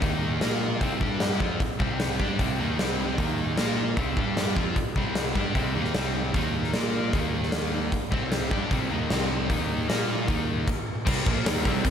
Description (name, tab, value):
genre	hard rock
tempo	152 BPM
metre	4/4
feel	straight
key	C minor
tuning	A4 = 438 Hz
part	cranked stack guitar	riff	0.0-11.9 s	Bb2 to Bb4	-31 LUFS	left 8 dB	overdrive, slapback echo
part	sludgy distorted guitar	riff	0.0-11.9 s	Bb2 to Bb4	-31 LUFS	right 7 dB	overdrive
part	fuzz fingered electric bass	bass	0.0-11.9 s	Bb1 to Bb2	-32 LUFS	equal	overdrive
part	huge arena drum kit	drums	0.0-11.9 s	crash cymbal, hi-hat, kick drum, snare drum	-27 LUFS	equal	none
room	moderate lush hall reverb, RT60 1.7 s, studio reverb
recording	big arena sound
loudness	-24 LUFS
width	side -8 dB against mid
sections	0.0-11.1 A section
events	stop 10.7-11.1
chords	0.0 Eb5; 0.4 Bb5; 0.8 C5; 1.0 G5; 1.4 Cm; 3.2 Eb5; 3.6 Bb5; 4.0 C5; 4.2 G5; 4.6 Cm; 6.3 Eb5; 6.7 Bb5; 7.1 Eb5; 8.1 Cm; 9.5 Eb5; 9.9 Bb5; 10.3 Eb5; 11.1 Cm